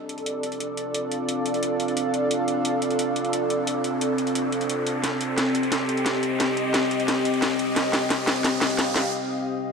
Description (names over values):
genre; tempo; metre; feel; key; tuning
dark technical drum and bass; 176 BPM; 4/4; straight; D phrygian; A4 = 441 Hz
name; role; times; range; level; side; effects
deep dark ambient pad; sustained chords; 0.2-9.7 s; C4 to Eb5; -27 LUFS; equal; chorus, built-in reverb
riser; sound effects; 2.0-9.1 s; none; -33 LUFS; equal; none
airy breathy pad; texture; 0.0-9.1 s; C4 to F5; -27 LUFS; equal; chorus
drum and bass drum kit; drums; 0.1-9.0 s; hi-hat, snare drum; -26 LUFS; equal; none
room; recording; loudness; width
moderate lush hall reverb, RT60 1.6 s; none; -22 LUFS; side -5 dB against mid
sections
0.0-9.7 A section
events
build-up 0.0-9.7; riser 2.0-9.1; drum fill 5.0-9.1; break 9.1-9.7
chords
0.0 Dm7; 5.0 Cm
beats
0.26 0.60 | 0.94 1.29 1.63 1.97 | 2.31 2.65 2.99 3.33 | 3.67 4.01 4.35 4.70 | 5.04 5.38 5.72 6.06 | 6.40 6.74 7.08 7.42 | 7.76 8.10 8.45 8.79 | 9.13 9.47